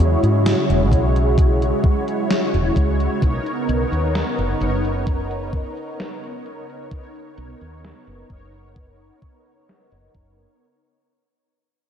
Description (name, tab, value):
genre	vaporwave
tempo	65 BPM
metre	4/4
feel	straight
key	unclear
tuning	A4 = 440 Hz
part	mellow synth brass	accompaniment	0.0-10.6 s	G#3 to C#5	-23 LUFS	right 1 dB	phaser, ensemble chorus, diffuse ambient delay
part	lush unison pad	sustained chords	0.0-10.6 s	C#3 to A#4	-27 LUFS	equal	chorus, phaser, vintage 12-bit sampler grit
part	woody fretless electric bass	bass	0.0-10.4 s	E1 to G#2	-20 LUFS	equal	analog chorus
part	gated 80s digital drum machine	drums	0.0-10.6 s	hi-hat, snare drum	-26 LUFS	left 1 dB	gated reverb, gated reverb snare, low-pass filter on hats, low-pass filter on snare, low-pass filter on room
part	electronic kick drum	drums	0.9-10.3 s	none	-19 LUFS	equal	none
room	moderate lush hall reverb, RT60 2.7 s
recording	dreamy mix soaked in reverb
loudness	-17 LUFS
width	side -8 dB against mid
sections	0.0-10.6 A section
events	fade-out 0.0-10.6; filter sweep on drum 0.0-10.6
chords	0.0 E69; 3.2 Bmaj9